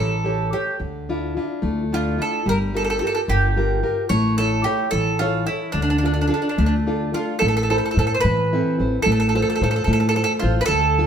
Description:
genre	italian folk, Italian serenade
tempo	73 BPM (dotted quarters)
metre	6/8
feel	straight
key	D harmonic minor, A minor from 7.4 s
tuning	A4 = 440 Hz
part	bowl-back mandolin	melody	0.0-11.1 s	D4 to C#5	-22 LUFS	right 3 dB	none
part	nylon-string guitar	accompaniment	0.0-11.1 s	D3 to C#5	-23 LUFS	left 1 dB	none
part	upright bass	bass	0.0-11.0 s	G1 to A2	-23 LUFS	equal	none
room	moderate stone room reverb, RT60 1.0 s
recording	band playing live in one room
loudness	-18 LUFS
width	side -8 dB against mid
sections	0.0-7.4 A section; 7.4-11.1 B section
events	none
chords	0.0 A7; 0.8 Dmadd9; 2.5 Gm7; 4.1 A; 5.7 Dm; 7.4 Am; 9.1 F/A

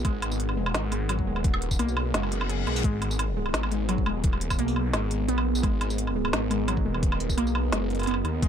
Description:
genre	half-time drum and bass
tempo	172 BPM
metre	4/4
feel	half-time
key	G# minor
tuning	A4 = 439 Hz
part	deep dark ambient pad	sustained chords	0.0-8.5 s	B3 to F#5	-33 LUFS	right 1 dB	chorus, built-in reverb, sidechain pumping
part	warbly dusty pluck	arpeggios	0.0-8.5 s	F#3 to G#4	-31 LUFS	right 1 dB	chorus, phaser, dub echo
part	phased detuned saw bass	bass	0.0-8.5 s	D#1 to D#2	-28 LUFS	equal	phaser
part	organic electronic drum kit	drums	0.0-8.5 s	hi-hat, snare drum, tambourine, woodblock	-31 LUFS	right 1 dB	none
part	electronic kick drum	drums	0.1-8.5 s	none	-27 LUFS	equal	overdrive
part	reverse cymbal	sound effects	2.3-2.8 s	none	-37 LUFS	left 8 dB	none
room	digital ambience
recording	dark, warm production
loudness	-24 LUFS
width	side -8 dB against mid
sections	0.0-8.5 A section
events	reverse cymbal 2.3-2.8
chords	0.0 G#madd9

